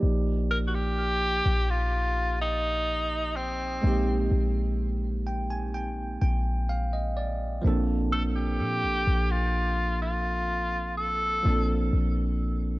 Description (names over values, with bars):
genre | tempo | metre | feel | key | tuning
contemporary R&B | 63 BPM | 4/4 | straight | Bb major | A4 = 442 Hz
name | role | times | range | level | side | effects
bell-like tine electric piano | accompaniment | 0.0-12.8 s | F3 to Ab5 | -31 LUFS | right 2 dB | lush chorus
clean 808-style bass | bass | 0.0-12.8 s | Bb1 to Bb2 | -27 LUFS | equal | none
breathy tenor saxophone | melody | 0.5-11.9 s | C4 to Bb4 | -28 LUFS | equal | none
room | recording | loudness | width
light reverb, small room ambience | worn, warbling old tape, cassette tape, warbly pitch drift | -24 LUFS | side -19 dB against mid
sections
0.0-12.8 A section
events
tine electric piano fill 4.8-7.6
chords
0.0 Ebmaj7/Bb; 3.8 Abmaj9/Bb; 7.6 Bbmaj7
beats
| 0.02 0.97 1.93 2.88 | 3.83 4.78 5.74 6.69 | 7.64 8.59 9.54 10.50 | 11.45 12.40